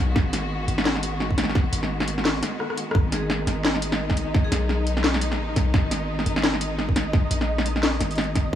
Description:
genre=half-time drum and bass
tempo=172 BPM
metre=4/4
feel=swing 58% on 16ths, half-time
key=G# minor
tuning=A4 = 440 Hz
part: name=rich studio string section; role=sustained chords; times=0.0-8.6 s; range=D#3 to F#4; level=-31 LUFS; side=left 2 dB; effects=sidechain pumping
part: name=long sustained 808-style bass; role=bass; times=0.0-8.6 s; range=G#1 to B1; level=-27 LUFS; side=equal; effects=none
part: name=drum and bass drum kit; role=drums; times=0.2-8.4 s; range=hi-hat, rim click, snare drum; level=-25 LUFS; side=equal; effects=none
part: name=electronic kick drum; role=drums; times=0.2-8.6 s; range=none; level=-22 LUFS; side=equal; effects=none
part: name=flickering grainy texture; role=texture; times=3.3-8.6 s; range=D#5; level=-34 LUFS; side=right 3 dB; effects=built-in reverb
part: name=vibraphone with hard mallets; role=melody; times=3.1-4.8 s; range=G#4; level=-37 LUFS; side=left 2 dB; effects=tape echo
room=light reverb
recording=none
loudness=-21 LUFS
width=side -10 dB against mid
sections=0.0-8.6 A section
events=break 2.6-2.9; drum fill 2.6-2.9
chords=0.0 G#m

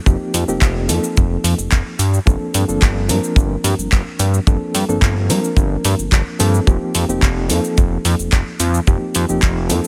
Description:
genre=nu-disco, nu disco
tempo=109 BPM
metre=4/4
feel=straight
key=G minor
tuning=A4 = 435 Hz
part: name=bright reed electric piano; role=accompaniment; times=0.0-9.9 s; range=F3 to Bb4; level=-24 LUFS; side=equal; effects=fast tremolo, delay
part: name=fat analog bass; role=bass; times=0.1-9.8 s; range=F1 to G2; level=-20 LUFS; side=equal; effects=none
part: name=house drum kit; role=drums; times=0.1-9.9 s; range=handclaps, hi-hat, shaker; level=-24 LUFS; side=equal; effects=none
part: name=kick drum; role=drums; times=0.1-9.5 s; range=none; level=-16 LUFS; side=equal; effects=none
room=digital ambience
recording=none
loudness=-17 LUFS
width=mono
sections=0.0-9.9 A section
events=none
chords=0.0 F9sus4; 2.0 Gm11; 6.7 F9sus4

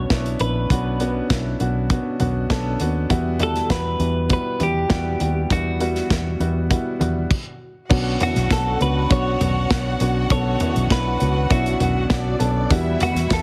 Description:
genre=piano-driven pop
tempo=100 BPM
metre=4/4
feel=straight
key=B minor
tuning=A4 = 440 Hz
part: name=twelve-string electric guitar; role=melody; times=0.0-13.4 s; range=F#4 to C#5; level=-28 LUFS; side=equal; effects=none
part: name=warm upright piano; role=accompaniment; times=0.0-13.4 s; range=B2 to A4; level=-27 LUFS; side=equal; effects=none
part: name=vintage muted fingered electric bass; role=bass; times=0.0-13.4 s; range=A#1 to E2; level=-25 LUFS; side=equal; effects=none
part: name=modern studio drum kit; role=drums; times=0.1-13.4 s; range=crash cymbal, hi-hat, kick drum, snare drum, toms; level=-25 LUFS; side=equal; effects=none
part: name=warm studio violin section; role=second line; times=7.9-13.4 s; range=D4 to F#5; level=-31 LUFS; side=equal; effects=none
room=light reverb, small room ambience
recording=heavily compressed radio sound, multiband compression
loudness=-21 LUFS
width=mono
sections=0.0-7.9 A section; 7.9-13.4 B section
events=stop 7.3-7.9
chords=0.0 Bmadd9; 3.1 Emadd9; 7.9 Bmadd9; 12.7 Emadd9

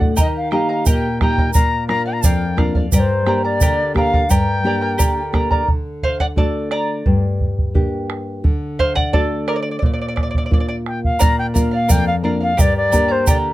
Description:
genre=andean folk, Andean ensemble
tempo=87 BPM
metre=2/4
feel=straight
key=G minor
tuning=A4 = 441 Hz
part: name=charango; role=accompaniment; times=0.0-13.5 s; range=G4 to Bb5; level=-22 LUFS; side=right 2 dB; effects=none
part: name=nylon-string guitar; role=accompaniment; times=0.0-13.5 s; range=F2 to G4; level=-20 LUFS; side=left 1 dB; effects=none
part: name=bombo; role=percussion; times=0.0-13.4 s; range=none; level=-17 LUFS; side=right 1 dB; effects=none
part: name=bright reedy large quena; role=melody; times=0.2-5.3, 10.9-13.4 s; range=C5 to Bb5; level=-20 LUFS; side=left 2 dB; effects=none
part: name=egg shaker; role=percussion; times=0.2-5.2, 11.2-13.4 s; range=none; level=-25 LUFS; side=right 6 dB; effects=none
room=light reverb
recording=close, detailed microphones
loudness=-15 LUFS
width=side -16 dB against mid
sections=0.0-5.7 A section; 5.7-11.2 B section; 11.2-13.5 C section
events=charango solo 5.7-11.2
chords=0.2 Eb; 1.5 Bb; 2.9 Gm; 5.7 D; 7.1 Gm; 8.4 D; 9.8 Bb; 12.6 Gm

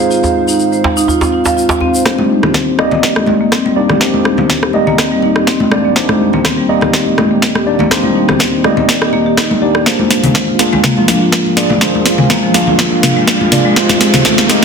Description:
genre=afro house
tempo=123 BPM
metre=4/4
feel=swing 54% on 16ths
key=C minor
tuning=A4 = 441 Hz
part: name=dark analog pad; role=sustained chords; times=0.0-14.6 s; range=Eb3 to G5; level=-23 LUFS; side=right 1 dB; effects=chorus, sidechain pumping
part: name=marimba with soft mallets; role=arpeggios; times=0.0-14.4 s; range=F3 to F5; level=-14 LUFS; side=left 1 dB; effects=sidechain pumping, low-pass filter, digital delay
part: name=mellow tine electric piano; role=stabs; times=0.0-14.6 s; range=Ab3 to F5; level=-16 LUFS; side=right 2 dB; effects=medium stereo tremolo, sidechain pumping, low-pass filter, digital delay
part: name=tube shaker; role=percussion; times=0.1-2.0 s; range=none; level=-22 LUFS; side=left 5 dB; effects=none
part: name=djembe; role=percussion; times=0.2-1.9 s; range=none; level=-17 LUFS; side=right 1 dB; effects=none
part: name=afro-pop drum kit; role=drums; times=2.1-14.6 s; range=hi-hat, rim click, snare drum, toms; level=-14 LUFS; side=equal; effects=soft clipping on snare, studio reverb
part: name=electronic kick drum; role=drums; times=2.1-14.4 s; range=none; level=-25 LUFS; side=equal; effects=overdrive, high-pass filter on kick, studio reverb
part: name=congas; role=percussion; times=2.1-14.6 s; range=none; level=-18 LUFS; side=left 3 dB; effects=none
part: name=riser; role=sound effects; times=12.0-14.6 s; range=none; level=-20 LUFS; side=right 1 dB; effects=none
room=moderate digital room reverb, RT60 1.2 s, studio ambience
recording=dense, heavily limited modern master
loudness=-9 LUFS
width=side -5 dB against mid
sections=0.0-2.1 A section; 2.1-14.6 B section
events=build-up 2.1-14.6; drum fill 2.1-14.6; filter sweep on marimba 2.1-14.6; filter sweep on tine electric piano 2.1-14.6; filter sweep on analog synth pad 2.1-14.6; riser 12.0-14.6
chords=0.0 Fm7; 2.1 Cm7; 9.9 Bb7; 13.8 Fm7

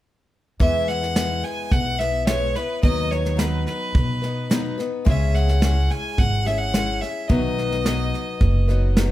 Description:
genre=honky-tonk and classic country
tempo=108 BPM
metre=4/4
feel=straight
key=E major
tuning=A4 = 440 Hz
part: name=bright fiddle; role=melody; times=0.6-9.0 s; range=B4 to G#5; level=-26 LUFS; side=equal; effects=none
part: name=picked acoustic archtop guitar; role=accompaniment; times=0.6-9.1 s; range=B2 to B4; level=-27 LUFS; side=left 4 dB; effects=none
part: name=upright bass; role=bass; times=0.6-9.1 s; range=F#1 to B2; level=-22 LUFS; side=equal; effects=none
part: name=soft brush drum kit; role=drums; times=0.6-9.1 s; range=hi-hat, kick drum, snare drum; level=-23 LUFS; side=equal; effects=none
room=light reverb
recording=none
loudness=-19 LUFS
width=side -14 dB against mid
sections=0.6-9.1 A section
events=none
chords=0.6 E; 2.8 B/D#; 5.1 C#m; 7.3 B

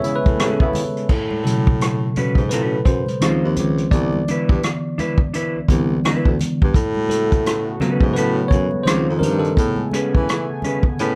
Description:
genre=R&B, neo-soul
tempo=85 BPM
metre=4/4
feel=swing 60% on 16ths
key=A major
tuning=A4 = 439 Hz
part: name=bell-like tine electric piano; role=accompaniment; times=0.0-11.2 s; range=B2 to E5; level=-23 LUFS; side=equal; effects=none
part: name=chorused pulse-width pad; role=sustained chords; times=0.0-1.1, 6.8-11.2 s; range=C#3 to G#5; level=-33 LUFS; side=equal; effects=none
part: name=mellow horn section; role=stabs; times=0.0-0.8 s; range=C#3 to E4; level=-28 LUFS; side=equal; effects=none
part: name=unplugged drum kit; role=drums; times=0.0-11.2 s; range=crash cymbal, hi-hat, kick drum, rim click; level=-21 LUFS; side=equal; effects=none
part: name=congas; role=percussion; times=0.0-11.2 s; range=none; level=-33 LUFS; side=equal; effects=none
part: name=warm baritone saxophone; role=bass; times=0.3-11.2 s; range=C2 to E3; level=-25 LUFS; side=equal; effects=none
part: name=electric guitar through a small old amp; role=second line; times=0.4-11.2 s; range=C#4 to B#4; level=-27 LUFS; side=equal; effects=none
room=light reverb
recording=dark, warm production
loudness=-19 LUFS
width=mono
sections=0.0-1.1 A section; 1.1-11.2 B section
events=band accent 0.0-1.1; tine electric piano solo 0.0-1.1, 1.1-11.2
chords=0.0 Amaj9; 1.1 A69; 3.2 C#maj9; 3.9 Cmaj9; 6.7 A69; 8.9 C#maj9; 9.6 Amaj9

